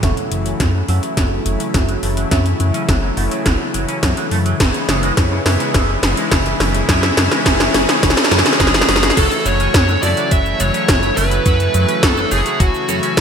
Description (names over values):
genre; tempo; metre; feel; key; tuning
synthwave; 105 BPM; 4/4; straight; F# minor; A4 = 438 Hz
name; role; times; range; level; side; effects
brassy analog pad; sustained chords; 0.0-13.2 s; C#3 to E4; -24 LUFS; left 3 dB; chorus, sidechain pumping
clean electric guitar; riff; 0.0-13.2 s; C#3 to C#4; -27 LUFS; right 4 dB; wide subtle chorus, low-pass filter, ping-pong delay
chorused polysynth; stabs; 0.0-13.0 s; C#4 to E5; -23 LUFS; right 2 dB; phaser, ping-pong delay
chorused synth bass; bass; 0.0-13.2 s; F#1 to F#2; -19 LUFS; equal; none
80s electronic pad drums; drums; 0.0-13.2 s; cabasa, crash cymbal, hi-hat, snare drum; -17 LUFS; equal; overdrive, gated reverb
electronic kick drum; drums; 0.0-13.2 s; none; -17 LUFS; equal; none
high-gain lead guitar; melody; 8.6-13.2 s; F#4 to E5; -19 LUFS; right 1 dB; distortion, digital delay
room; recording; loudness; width
moderate lush hall reverb, RT60 2.6 s; bright 1980s-style digital production; -13 LUFS; side -7 dB against mid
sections
0.0-9.2 A section; 9.2-13.2 B section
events
drum fill 0.0-9.2; filter sweep on analog polysynth 0.0-9.2; filter sweep on clean electric guitar 0.0-9.2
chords
0.0 F#m7; 4.6 C#m7/F#; 9.2 F#m7